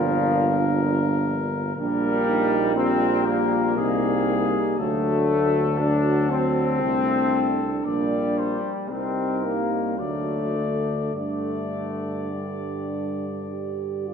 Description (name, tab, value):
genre	classical, hymn-like piece for brass band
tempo	50-62 BPM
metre	3/4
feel	rubato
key	G minor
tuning	A4 = 440 Hz
part	warm cornet	melody	0.0-14.1 s	Ab4 to D5	-30 LUFS	left 6 dB	none
part	mellow French horn section	second line	0.0-14.1 s	D4 to G4	-29 LUFS	right 6 dB	none
part	warm euphonium	accompaniment	0.0-14.1 s	Bb2 to Bb3	-30 LUFS	right 4 dB	none
part	warm trombone section	accompaniment	0.0-13.5 s	F3 to D4	-25 LUFS	left 3 dB	none
part	warm tuba	bass	0.0-14.1 s	G1 to G2	-27 LUFS	equal	none
room	moderate concert hall reverb, RT60 2.4 s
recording	minimal, uncompressed stereo recording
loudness	-21 LUFS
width	side -7 dB against mid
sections	0.0-14.1 A section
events	none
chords	0.0 Gm; 1.8 Gm/Bb; 3.8 Ab/C; 4.8 D; 6.8 D5/C; 7.8 Gm/Bb; 8.9 Cm7; 10.0 D; 11.1 G5